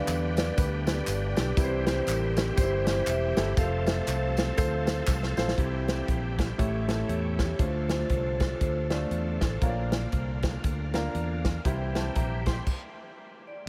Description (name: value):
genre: uptempo gospel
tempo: 119 BPM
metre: 4/4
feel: swing 60% on 8ths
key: unclear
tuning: A4 = 440 Hz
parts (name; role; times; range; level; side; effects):
- vibraphone with medium hard mallets; melody; 0.0-9.6, 13.5-13.7 s; E4 to F5; -36 LUFS; equal; delay
- warm grand piano; accompaniment; 0.0-12.9 s; A2 to C6; -36 LUFS; equal; none
- bright tonewheel organ; sustained chords; 0.0-12.7 s; D3 to A4; -39 LUFS; equal; slow rotary speaker, chorus vibrato
- fingered electric bass; bass; 0.1-12.6 s; E1 to E2; -33 LUFS; equal; none
- natural country drum kit; drums; 0.1-12.8 s; crash cymbal, hi-hat, kick drum, snare drum; -32 LUFS; equal; none
- handclaps and tambourine; percussion; 0.1-5.5 s; none; -43 LUFS; equal; none
room: moderate huge ambient reverb, RT60 8.4 s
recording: dreamy mix soaked in reverb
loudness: -28 LUFS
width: mono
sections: 0.0-5.6 A section; 5.6-13.7 B section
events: drum fill 5.1-5.6; stop 12.7-13.7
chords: 0.0 G; 1.6 C; 3.6 F; 5.6 C; 6.6 A7; 7.6 Dm; 9.6 Bb; 11.7 C